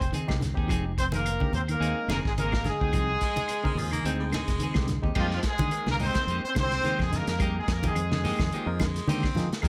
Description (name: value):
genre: afrobeat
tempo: 107 BPM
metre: 4/4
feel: swing 55% on 16ths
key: F dorian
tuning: A4 = 440 Hz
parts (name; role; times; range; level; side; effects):
- warm horn section; melody; 0.0-9.7 s; F3 to C5; -33 LUFS; equal; slapback echo
- bright trumpet; second line; 0.0-9.7 s; F4 to C5; -39 LUFS; equal; none
- electric guitar at the edge of break-up; arpeggios; 0.0-9.7 s; D3 to G3; -37 LUFS; equal; none
- clean electric guitar; stabs; 0.0-9.7 s; Ab3 to Ab4; -39 LUFS; equal; none
- fingered electric bass; bass; 0.0-9.7 s; F1 to F3; -33 LUFS; equal; none
- crunchy breakbeat drum kit; drums; 0.0-9.7 s; crash cymbal, hi-hat, kick drum, snare drum; -33 LUFS; equal; none
- congas; percussion; 0.1-9.7 s; none; -37 LUFS; equal; none
- barky tine electric piano; accompaniment; 0.3-9.7 s; Ab3 to G5; -40 LUFS; equal; overdrive, fast tremolo
- claves; percussion; 0.3-9.7 s; none; -45 LUFS; equal; none
- raspy baritone saxophone; second line; 3.2-5.1, 8.5-9.5 s; F3 to C4; -39 LUFS; equal; none
room: light reverb, small room reverb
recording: none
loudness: -27 LUFS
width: mono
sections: 0.0-5.2 A section; 5.2-9.7 B section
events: none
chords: 0.0 Fm11